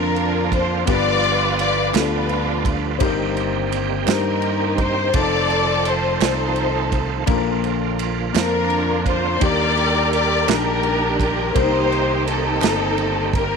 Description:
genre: slow gospel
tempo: 56 BPM (dotted quarters)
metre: 6/8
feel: straight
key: Bb major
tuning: A4 = 440 Hz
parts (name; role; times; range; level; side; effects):
- warm studio string section; melody; 0.0-13.6 s; D4 to D5; -20 LUFS; left 2 dB; tape echo
- warm grand piano; accompaniment; 0.0-13.6 s; G2 to A5; -25 LUFS; left 15 dB; none
- bright tonewheel organ; sustained chords; 0.0-13.6 s; D3 to D5; -27 LUFS; right 14 dB; slow rotary speaker, chorus vibrato
- fingered electric bass; bass; 0.0-13.6 s; F1 to G2; -25 LUFS; right 1 dB; none
- modern studio drum kit; drums; 0.2-13.5 s; kick drum, ride cymbal, snare drum; -25 LUFS; right 4 dB; none
- group handclap; percussion; 1.9-12.9 s; none; -29 LUFS; right 17 dB; none
room: light reverb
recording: 1960s-style stereo with parts hard left and right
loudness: -17 LUFS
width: side -5 dB against mid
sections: 0.0-13.6 A section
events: none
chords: 0.0 Bbmaj7; 0.9 G7; 3.0 Cm7/G; 5.1 F7; 7.3 Bbmaj7; 9.4 Ebmaj7; 11.6 Cm7

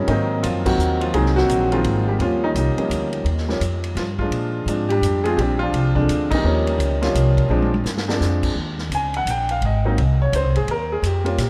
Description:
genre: jazz piano trio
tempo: 170 BPM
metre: 3/4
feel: swing 63% on 8ths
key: unclear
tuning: A4 = 443 Hz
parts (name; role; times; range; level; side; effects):
- warm upright piano; melody; 0.0-11.5 s; D3 to Ab5; -23 LUFS; equal; none
- upright bass; bass; 0.0-11.5 s; Ab1 to Bb2; -24 LUFS; equal; none
- vintage drum kit; drums; 0.1-11.5 s; crash cymbal, hi-hat, kick drum, ride cymbal, snare drum, toms; -32 LUFS; equal; none
room: moderate cathedral reverb, RT60 5.2 s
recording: in a vast, echoing space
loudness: -20 LUFS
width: mono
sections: 0.0-8.6 A section; 8.6-11.5 B section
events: band accent 0.6, 6.3; drum fill 7.5-8.2; upright piano solo 8.6-11.5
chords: 0.1 Ab9; 2.2 Eb9; 4.3 Bb9; 6.4 Eb9; 7.5 Bb9; 8.6 Eb5; 9.6 Ab; 10.7 Ebadd9

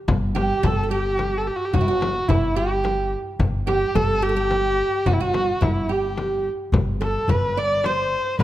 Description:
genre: Persian modal ensemble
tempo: 108 BPM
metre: 3/4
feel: straight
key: G dastgah mahur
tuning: A4 = 438 Hz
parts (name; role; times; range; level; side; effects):
- upright bass; bass; 0.1-8.4 s; G1; -26 LUFS; equal; none
- frame drum; percussion; 0.1-8.4 s; none; -26 LUFS; left 2 dB; none
- tombak; percussion; 0.1-8.4 s; none; -26 LUFS; left 2 dB; none
- oud; second line; 0.3-8.4 s; E4 to D5; -27 LUFS; right 4 dB; none
- warm kamancheh; melody; 0.4-8.4 s; E4 to D5; -23 LUFS; equal; none
room: light reverb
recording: none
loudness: -19 LUFS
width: side -14 dB against mid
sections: 0.1-8.4 A section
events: none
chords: none

